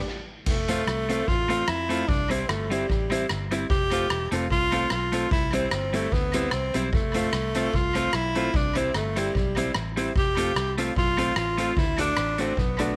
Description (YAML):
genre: ska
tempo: 149 BPM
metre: 4/4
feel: swing 55% on 8ths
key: unclear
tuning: A4 = 441 Hz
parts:
  - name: breathy tenor saxophone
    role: melody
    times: 0.0-13.0 s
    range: G3 to G4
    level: -30 LUFS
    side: equal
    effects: none
  - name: vintage muted fingered electric bass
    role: bass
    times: 0.5-12.9 s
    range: E1 to F2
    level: -33 LUFS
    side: equal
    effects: none
  - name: street-band drum kit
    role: drums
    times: 0.5-12.9 s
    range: crash cymbal, hi-hat, kick drum, rim click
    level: -31 LUFS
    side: equal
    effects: tape echo
  - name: electric guitar at the edge of break-up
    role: accompaniment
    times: 0.7-12.9 s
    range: G3 to F#4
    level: -33 LUFS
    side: equal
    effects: tape echo
  - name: warm upright piano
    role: stabs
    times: 0.7-12.9 s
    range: C4 to D5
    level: -35 LUFS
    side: equal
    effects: none
room: light reverb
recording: none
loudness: -25 LUFS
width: mono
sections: 0.5-13.0 A section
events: band accent 0.0-0.5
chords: 0.5 F; 2.1 C; 3.7 F; 5.3 C; 6.9 F; 8.5 C; 10.2 F; 11.8 D